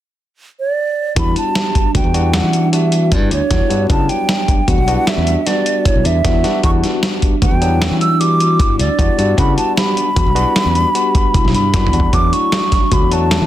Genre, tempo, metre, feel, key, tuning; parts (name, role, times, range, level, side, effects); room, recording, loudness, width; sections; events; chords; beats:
progressive instrumental, band music in an uneven meter; 153 BPM; 7/4; straight; E dorian; A4 = 442 Hz
mellow hollow silver concert flute; melody; 0.6-13.5 s; C#5 to E6; -18 LUFS; right 2 dB; plate reverb, ping-pong delay
barky tine electric piano; accompaniment; 1.2-13.5 s; F#3 to F#4; -22 LUFS; left 5 dB; overdrive, plate reverb
vibraphone with soft mallets; arpeggios; 1.2-13.4 s; C#4 to G4; -23 LUFS; moving between left 2 dB and right 5 dB; auto-pan, plate reverb
modern bright fingered electric bass; bass; 1.2-13.5 s; B1 to E3; -16 LUFS; equal
dusty soul sampler-style drum kit; drums; 1.2-13.4 s; hi-hat, kick drum, snare drum, toms; -16 LUFS; equal
light reverb; dense, heavily limited modern master; -12 LUFS; side -12 dB against mid
0.0-1.2 A section; 1.2-13.5 B section
drum fill 11.3-12.1
0.0 N.C.; 1.2 Em7; 12.1 D
0.38 0.78 | 1.17 1.56 1.95 2.34 2.73 3.12 3.51 | 3.90 4.29 4.68 5.07 5.46 5.85 6.25 | 6.64 7.03 7.42 7.81 8.20 8.60 8.99 | 9.38 9.77 10.16 10.56 10.95 11.34 11.74 | 12.13 12.52 12.92 13.31